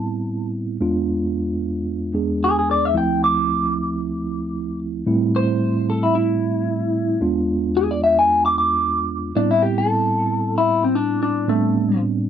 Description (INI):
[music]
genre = blues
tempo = 112 BPM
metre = 4/4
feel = swing 55% on 16ths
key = A minor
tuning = A4 = 439 Hz
[part]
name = electric guitar through a small old amp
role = melody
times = 0.0-12.0 s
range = A3 to D6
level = -19 LUFS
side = left 1 dB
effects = phaser
[part]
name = mellow tine electric piano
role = accompaniment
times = 0.0-12.3 s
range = D2 to G#4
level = -21 LUFS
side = right 2 dB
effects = medium stereo tremolo
[sound]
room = light reverb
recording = dry, close 1970s-style studio recording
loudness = -18 LUFS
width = side -9 dB against mid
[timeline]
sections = 0.0-9.3 A section; 9.3-12.3 B section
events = clean electric guitar solo 9.3-12.3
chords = 0.0 Am9; 0.8 E7b9; 2.9 Dm9; 5.1 Am7; 7.2 E7b9; 9.3 Am9